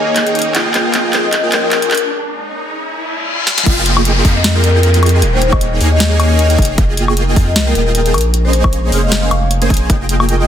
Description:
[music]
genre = future bass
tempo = 154 BPM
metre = 4/4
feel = swing 56% on 16ths, half-time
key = F minor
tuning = A4 = 441 Hz
[part]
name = airy breathy pad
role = sustained chords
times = 0.0-10.5 s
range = Eb3 to G5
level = -27 LUFS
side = right 1 dB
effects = chorus, phaser, sidechain pumping
[part]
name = supersaw chords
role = riff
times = 0.0-10.5 s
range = Bb3 to Ab5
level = -17 LUFS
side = right 1 dB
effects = analog chorus, sidechain pumping, low-pass filter
[part]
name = saturated sub bass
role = bass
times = 0.0-10.5 s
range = Eb1 to F2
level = -14 LUFS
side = equal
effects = sidechain pumping, high-pass filter
[part]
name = riser, reverse cymbal and downlifter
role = sound effects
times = 0.5-6.8 s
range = none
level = -21 LUFS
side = left 2 dB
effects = none
[part]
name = vibraphone with soft mallets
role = melody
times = 0.1-2.0, 4.4-9.4 s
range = Bb4 to F5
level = -19 LUFS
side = left 4 dB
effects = sidechain pumping, dub echo
[part]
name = trap drum kit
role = drums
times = 0.2-10.4 s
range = crash cymbal, handclaps, hi-hat, snare drum, woodblock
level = -17 LUFS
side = left 1 dB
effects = soft clipping on snare
[part]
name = electronic kick drum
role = drums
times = 3.7-10.0 s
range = none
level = -13 LUFS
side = equal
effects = none
[sound]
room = light reverb, digital ambience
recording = dense, heavily limited modern master, high-pass filter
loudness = -11 LUFS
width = side -10 dB against mid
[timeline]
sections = 0.0-3.7 A section; 3.7-10.5 B section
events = build-up 0.0-3.7; drum fill 0.0-2.1, 3.5; filter sweep 0.0-3.7; riser 0.5-3.7; break 2.1-3.7; reverse cymbal 2.9-3.7; drop 3.7-10.5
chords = 0.0 Eb7sus4; 0.5 Fm11; 1.9 Bbm7; 3.7 Fm11; 5.2 Eb7sus4; 6.8 Fm11; 8.1 Bbm9; 9.9 Fm11

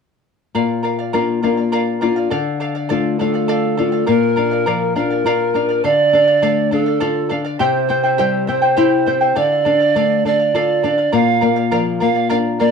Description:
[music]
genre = andean folk, Andean ensemble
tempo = 68 BPM (dotted quarters)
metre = 6/8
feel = straight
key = unclear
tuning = A4 = 440 Hz
[part]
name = charango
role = accompaniment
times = 0.5-12.7 s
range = E4 to G5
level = -21 LUFS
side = right 1 dB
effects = none
[part]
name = flamenco guitar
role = accompaniment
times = 0.5-12.7 s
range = Bb2 to F4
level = -18 LUFS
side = left 5 dB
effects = none
[part]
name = polished pan flute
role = melody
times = 3.2-12.7 s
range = A4 to F5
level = -16 LUFS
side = right 4 dB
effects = none
[sound]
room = wet studio reverb, RT60 0.6 s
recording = dark, warm production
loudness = -14 LUFS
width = side -6 dB against mid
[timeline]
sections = 0.5-4.1 A section; 4.1-12.7 B section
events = none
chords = 0.5 Bb; 2.3 Dm; 4.1 Bb; 5.8 Dm; 7.6 C; 9.4 Dm; 11.1 Bb

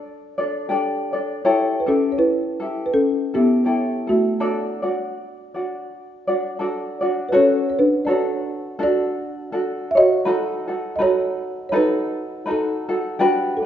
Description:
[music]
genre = Hawaiian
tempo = 82 BPM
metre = 4/4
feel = swing 58% on 8ths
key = D major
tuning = A4 = 440 Hz
[part]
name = folk marimba with soft mallets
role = melody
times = 0.0-13.6 s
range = A3 to E5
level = -19 LUFS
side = equal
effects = none
[part]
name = tenor ukulele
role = accompaniment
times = 0.0-13.7 s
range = D4 to D5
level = -22 LUFS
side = left 1 dB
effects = none
[sound]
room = wet recital hall reverb, RT60 1.6 s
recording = recorded in a church or concert hall, nothing above 7.7 kHz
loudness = -18 LUFS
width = side -10 dB against mid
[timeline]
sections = 0.0-7.3 A section; 7.3-13.7 B section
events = none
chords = 0.0 Gsus2; 1.4 A7; 4.4 D; 7.3 Dmaj7; 10.3 B7

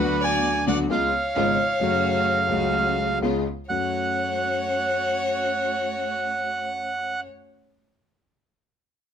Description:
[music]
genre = tango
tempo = 130 BPM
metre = 4/4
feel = rubato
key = F# harmonic minor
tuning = A4 = 438 Hz
[part]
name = bandoneon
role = melody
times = 0.0-7.2 s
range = B4 to G#5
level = -24 LUFS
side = right 3 dB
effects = none
[part]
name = warm violin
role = second line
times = 0.0-7.2 s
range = F#4 to D5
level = -29 LUFS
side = left 4 dB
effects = none
[part]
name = warm concert grand piano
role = accompaniment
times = 0.0-7.2 s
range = G#1 to F#4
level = -26 LUFS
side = left 4 dB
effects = none
[part]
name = dark studio string section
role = stabs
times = 0.0-7.2 s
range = D3 to F#4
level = -32 LUFS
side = right 4 dB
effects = none
[sound]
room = light reverb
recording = close, detailed microphones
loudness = -21 LUFS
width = side -8 dB against mid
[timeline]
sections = 0.0-3.7 A section; 3.7-7.4 B section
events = none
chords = 0.0 Bm/D; 0.9 C#7; 1.8 F#m; 3.2 C#7; 3.7 F#m

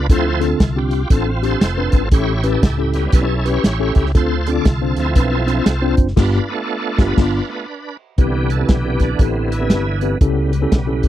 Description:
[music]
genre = uptempo gospel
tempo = 119 BPM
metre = 4/4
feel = swing 63% on 8ths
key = C major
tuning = A4 = 437 Hz
[part]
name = bright tonewheel organ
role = sustained chords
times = 0.0-11.1 s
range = C#3 to D5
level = -23 LUFS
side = right 4 dB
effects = slow rotary speaker, overdrive, chorus vibrato
[part]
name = fingered electric bass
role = bass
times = 0.0-11.1 s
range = F1 to D2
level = -20 LUFS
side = equal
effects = none
[part]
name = mellow tine electric piano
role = accompaniment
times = 0.1-11.1 s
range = G2 to C5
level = -20 LUFS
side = left 3 dB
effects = medium stereo tremolo
[part]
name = warm soul drum kit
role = drums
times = 0.1-11.1 s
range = crash cymbal, hi-hat, kick drum, snare drum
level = -14 LUFS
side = equal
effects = none
[sound]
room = little or no reverb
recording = dry, close 1970s-style studio recording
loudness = -14 LUFS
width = side -12 dB against mid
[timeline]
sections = 0.0-8.2 A section; 8.2-11.1 B section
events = tonewheel organ solo 0.0-8.2, 8.2-11.1; band accent 6.2-8.2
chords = 0.1 Dm7; 2.1 A7; 4.1 Dm7; 6.2 G7; 8.2 Cmaj7; 10.2 A7

